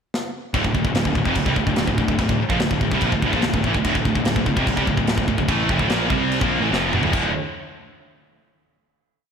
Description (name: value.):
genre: heavy metal.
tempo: 145 BPM.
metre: 4/4.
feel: straight.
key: D minor.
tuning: A4 = 440 Hz.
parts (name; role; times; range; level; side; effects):
tight metal drum kit; drums; 0.1-7.2 s; china cymbal, crash cymbal, kick drum, snare drum, toms; -24 LUFS; equal; none.
high-gain distorted guitar; riff; 0.5-7.3 s; D2 to C4; -24 LUFS; right 8 dB; distortion, slapback echo.
scooped high-gain guitar; riff; 0.5-7.3 s; D2 to C4; -25 LUFS; left 9 dB; distortion, slapback echo.
sludgy distorted guitar; riff; 0.5-7.3 s; D2 to F4; -26 LUFS; left 1 dB; overdrive.
fuzz picked electric bass; bass; 0.5-7.3 s; D1 to C2; -26 LUFS; equal; overdrive.
room: moderate lush hall reverb, RT60 1.8 s, small room ambience.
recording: big arena sound.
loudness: -18 LUFS.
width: side -7 dB against mid.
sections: 0.0-0.5 pickup bar; 0.5-7.1 riff; 7.1-8.8 final chord.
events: drum fill 0.1-0.5, 6.7-7.1.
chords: 0.0 N.C.; 0.5 Dm; 7.1 D5.